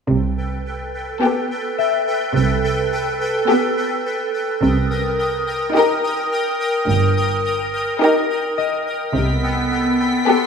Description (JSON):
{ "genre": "cinematic, suspense film score", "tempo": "53 BPM", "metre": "4/4", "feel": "straight", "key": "unclear", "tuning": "A4 = 442 Hz", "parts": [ { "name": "pulsing gated texture", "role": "sustained chords", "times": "0.1-10.5 s", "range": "B3 to Eb6", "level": "-20 LUFS", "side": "equal", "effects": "chorus, built-in reverb" }, { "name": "rich chamber double bass section", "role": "bass", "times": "0.1-10.1 s", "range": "G1 to C2", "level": "-23 LUFS", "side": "right 3 dB", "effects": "none" }, { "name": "rich symphonic cello section", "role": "bass", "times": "0.1-10.1 s", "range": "G2 to C3", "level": "-22 LUFS", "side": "right 3 dB", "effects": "none" }, { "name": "rich chamber violin section", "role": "melody", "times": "1.2-10.5 s", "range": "A4 to Bb4", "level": "-21 LUFS", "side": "left 5 dB", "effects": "none" }, { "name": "rich studio violin section", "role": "second line", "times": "1.2-10.5 s", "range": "G4", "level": "-22 LUFS", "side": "left 1 dB", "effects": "none" }, { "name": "rich studio viola section", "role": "accompaniment", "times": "1.2-10.5 s", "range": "B3 to Eb4", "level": "-22 LUFS", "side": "right 1 dB", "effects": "none" }, { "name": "concert harp", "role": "texture", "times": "1.8-10.5 s", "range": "Bb4 to E5", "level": "-26 LUFS", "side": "left 9 dB", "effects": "none" }, { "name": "warm chamber violin section", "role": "texture", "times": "9.1-10.5 s", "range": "C6 to B6", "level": "-26 LUFS", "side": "left 2 dB", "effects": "none" } ], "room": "moderate scoring stage reverb, RT60 2.0 s", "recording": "minimal, uncompressed stereo recording", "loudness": "-17 LUFS", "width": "side -6 dB against mid", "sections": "0.1-10.5 A section", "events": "none", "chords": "0.1 Gadd9/C; 4.6 Cm7; 9.1 Gadd9/C" }